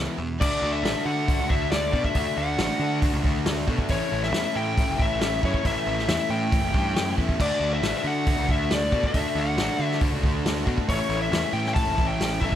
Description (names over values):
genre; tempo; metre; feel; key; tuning
classic rock; 137 BPM; 4/4; straight; unclear; A4 = 440 Hz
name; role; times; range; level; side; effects
cranked stack guitar; riff; 0.0-12.6 s; E2 to F#4; -34 LUFS; right 12 dB; overdrive
overdriven semi-hollow guitar; riff; 0.0-12.6 s; E2 to F#4; -31 LUFS; left 7 dB; none
fuzz picked electric bass; bass; 0.0-12.5 s; F#1 to D3; -29 LUFS; equal; overdrive
smooth overdriven lead guitar; melody; 0.4-12.6 s; C#5 to A5; -28 LUFS; left 2 dB; none
overdriven electric guitar; riff; 0.4-12.6 s; A2 to D4; -34 LUFS; right 1 dB; none
vintage drum kit; drums; 0.4-12.6 s; crash cymbal, hi-hat, kick drum, snare drum; -26 LUFS; equal; none
room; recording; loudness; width
small room reverb; none; -22 LUFS; side -10 dB against mid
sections
0.4-12.6 A section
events
none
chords
0.4 D; 3.9 A; 7.4 D; 10.9 A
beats
| 0.40 0.84 1.27 1.71 | 2.15 2.58 3.02 3.46 | 3.90 4.33 4.77 5.21 | 5.64 6.08 6.52 6.95 | 7.39 7.83 8.27 8.70 | 9.14 9.58 10.01 10.45 | 10.89 11.32 11.76 12.20